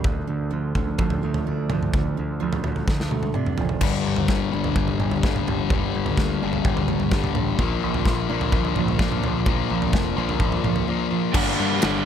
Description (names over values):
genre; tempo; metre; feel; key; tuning
quiet-loud alternative rock; 128 BPM; 4/4; straight; G minor; A4 = 440 Hz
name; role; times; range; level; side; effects
picked steel-string acoustic guitar; arpeggios; 0.0-11.4 s; G2 to D4; -29 LUFS; right 11 dB; none
growling picked electric bass; bass; 0.0-12.0 s; F1 to C3; -28 LUFS; equal; overdrive
big rock drum kit; drums; 0.0-11.9 s; crash cymbal, kick drum, ride cymbal, snare drum, toms; -24 LUFS; equal; none
thick fuzz guitar; riff; 3.8-12.1 s; G2 to D4; -24 LUFS; left 12 dB; distortion
cranked stack guitar; riff; 11.3-12.1 s; G2 to D4; -24 LUFS; right 12 dB; overdrive
room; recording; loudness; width
light reverb, studio ambience; none; -20 LUFS; side -9 dB against mid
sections
0.0-3.8 A section; 3.8-11.4 B section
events
drum fill 2.9-3.8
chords
0.1 Dm; 3.8 Gm; 7.6 Bb; 11.4 Gm